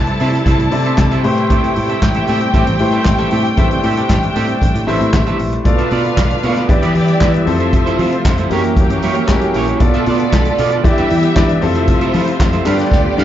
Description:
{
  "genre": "disco",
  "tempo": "116 BPM",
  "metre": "4/4",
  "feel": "straight",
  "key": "A minor",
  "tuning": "A4 = 440 Hz",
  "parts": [
    { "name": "dark studio string section", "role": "second line", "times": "0.0-13.2 s", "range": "A3 to A5", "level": "-20 LUFS", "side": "equal", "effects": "none" },
    { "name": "warm concert grand piano", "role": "accompaniment", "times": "0.0-13.2 s", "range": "B2 to D5", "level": "-19 LUFS", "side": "left 4 dB", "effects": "slapback echo" },
    { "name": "clear studio string section", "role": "sustained chords", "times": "0.0-13.2 s", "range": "C3 to E5", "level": "-23 LUFS", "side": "right 2 dB", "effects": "none" },
    { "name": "fingered electric bass", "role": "bass", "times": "0.0-13.2 s", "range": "A1 to F#3", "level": "-18 LUFS", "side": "equal", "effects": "none" },
    { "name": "electric guitar at the edge of break-up", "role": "accompaniment", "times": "0.1-13.2 s", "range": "A#3 to G5", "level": "-22 LUFS", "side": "right 7 dB", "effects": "lush chorus" },
    { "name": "vintage drum kit", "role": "drums", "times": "0.1-13.2 s", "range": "handclaps, hi-hat, kick drum, snare drum", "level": "-17 LUFS", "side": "equal", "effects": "none" },
    { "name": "group handclap", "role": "percussion", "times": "1.0-12.8 s", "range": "none", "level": "-30 LUFS", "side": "equal", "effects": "none" }
  ],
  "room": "light reverb",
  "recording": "live gig heard through the venue's PA, club reverb, nothing above 7.6 kHz",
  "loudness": "-12 LUFS",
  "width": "side -11 dB against mid",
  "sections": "0.0-5.7 A section; 5.7-13.2 B section",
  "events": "drum fill 12.9-13.2",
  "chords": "0.0 C6; 1.2 Am7; 5.7 Bm7b5; 6.7 Em7; 7.5 Fmaj7; 8.5 F#7b9; 9.8 Bm7b5; 10.8 Em7; 11.6 Fmaj7; 12.7 G7",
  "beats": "0.46 0.98 | 1.50 2.02 2.54 3.06 | 3.58 4.10 4.62 5.14 | 5.66 6.18 6.70 7.21 | 7.73 8.25 8.77 9.29 | 9.81 10.33 10.85 11.36 | 11.88 12.40 12.92"
}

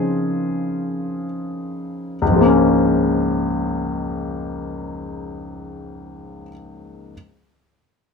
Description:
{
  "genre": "neoclassical minimalist piano",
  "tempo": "free time",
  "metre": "none",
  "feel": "none",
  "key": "Db major",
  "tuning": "A4 = 440 Hz",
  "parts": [
    { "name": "clear baby grand piano", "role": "solo", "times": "0.0-7.1 s", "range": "Db2 to Ab4", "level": "-19 LUFS", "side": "left 2 dB", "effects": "none" }
  ],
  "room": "moderate studio reverb, RT60 0.7 s",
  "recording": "dark, warm production",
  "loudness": "-18 LUFS",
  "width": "side -5 dB against mid",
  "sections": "0.0-2.2 A section; 2.2-4.9 B section",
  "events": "slowing down 0.0-2.2",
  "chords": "0.0 Ab6/Db; 2.2 Db6",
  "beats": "free time"
}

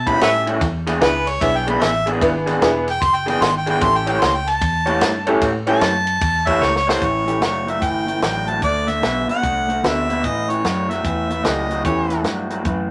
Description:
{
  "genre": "electric blues shuffle",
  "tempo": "150 BPM",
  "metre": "4/4",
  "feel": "swing 64% on 8ths",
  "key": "A mixolydian",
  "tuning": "A4 = 439 Hz",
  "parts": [
    { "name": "warm harmonica", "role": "melody", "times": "0.0-12.2 s", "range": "B4 to C6", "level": "-22 LUFS", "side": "equal", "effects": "none" },
    { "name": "vintage muted fingered electric bass", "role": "bass", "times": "0.0-12.9 s", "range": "E1 to B2", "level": "-29 LUFS", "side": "equal", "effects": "none" },
    { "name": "electric guitar through a small old amp", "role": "riff", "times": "0.1-12.9 s", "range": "A2 to C#5", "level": "-24 LUFS", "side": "equal", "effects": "none" },
    { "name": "compact cocktail drum kit", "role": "drums", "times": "0.1-12.8 s", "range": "hi-hat, kick drum, ride cymbal, snare drum", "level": "-26 LUFS", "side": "equal", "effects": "none" },
    { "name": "tack piano", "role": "accompaniment", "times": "0.2-7.4, 9.8-12.1 s", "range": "A3 to C#5", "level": "-24 LUFS", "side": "equal", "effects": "none" }
  ],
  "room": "wet studio reverb, RT60 0.6 s",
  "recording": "none",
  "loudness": "-19 LUFS",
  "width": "mono",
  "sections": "0.0-7.0 A section; 7.0-12.9 B section",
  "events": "harmonica solo 0.0-7.0; drum fill 6.6-7.0",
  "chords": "0.0 A7; 0.6 E7; 3.8 A7; 8.6 D7; 10.2 A7",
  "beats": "0.21 | 0.61 1.01 1.41 1.81 | 2.21 2.61 3.02 3.42 | 3.82 4.22 4.62 5.02 | 5.42 5.82 6.22 6.62 | 7.02 7.43 7.83 8.23 | 8.63 9.04 9.44 9.84 | 10.24 10.64 11.05 11.45 | 11.85 12.26 12.66"
}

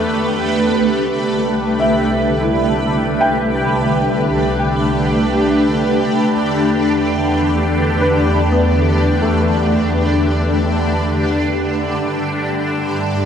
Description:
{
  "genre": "ambient",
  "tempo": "64 BPM",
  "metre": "3/4",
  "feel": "straight",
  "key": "unclear",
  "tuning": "A4 = 441 Hz",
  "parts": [
    { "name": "shimmering ambient pad", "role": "sustained chords", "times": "0.0-13.3 s", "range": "D3 to B4", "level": "-15 LUFS", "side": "equal", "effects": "chorus, built-in reverb, phaser" },
    { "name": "felt-muted upright piano", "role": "arpeggios", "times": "0.0-13.3 s", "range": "A3 to G5", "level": "-22 LUFS", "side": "equal", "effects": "tape echo" },
    { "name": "clear studio double bass section", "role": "bass", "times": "0.0-13.3 s", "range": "C2 to G2", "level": "-21 LUFS", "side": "equal", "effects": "none" }
  ],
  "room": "wet cathedral reverb, RT60 6.5 s",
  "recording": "none",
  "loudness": "-14 LUFS",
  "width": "side -8 dB against mid",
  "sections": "0.8-13.3 A section",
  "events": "none",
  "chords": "0.0 Em7; 0.8 C6; 6.4 Em7; 11.9 G",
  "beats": "| 0.81 1.74 2.67 | 3.60 4.52 5.44 | 6.36 7.28 8.20 | 9.13 10.06 11.00 | 11.95 12.89"
}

